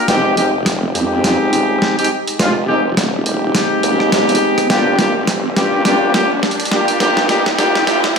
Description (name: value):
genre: glitch hop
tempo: 104 BPM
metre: 4/4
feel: swing 58% on 16ths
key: F dorian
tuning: A4 = 442 Hz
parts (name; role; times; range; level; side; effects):
- clear horn section; stabs; 0.0-8.2 s; Ab3 to G4; -15 LUFS; equal; tape echo
- swell and riser; sound effects; 0.0-8.2 s; none; -24 LUFS; right 1 dB; none
- formant-sweep wobble bass; bass; 0.1-8.1 s; Eb1 to G2; -21 LUFS; equal; chorus, high-pass filter
- boom bap sampler-style drum kit; drums; 0.1-8.2 s; hi-hat, rim click, snare drum; -19 LUFS; equal; none
room: wet plate reverb, RT60 1.9 s, digital ambience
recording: played on a big sound system in a bare room, stone room reverb, high-pass filter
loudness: -12 LUFS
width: side -5 dB against mid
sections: 0.1-8.2 A section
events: build-up 0.1-8.2; drum fill 0.1-8.2; riser 0.1-8.2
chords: 0.1 Fm7; 4.7 Gm7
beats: | 0.09 0.66 1.24 1.82 | 2.39 2.97 3.55 4.12 | 4.70 5.28 5.86 6.43 | 7.01 7.59 8.16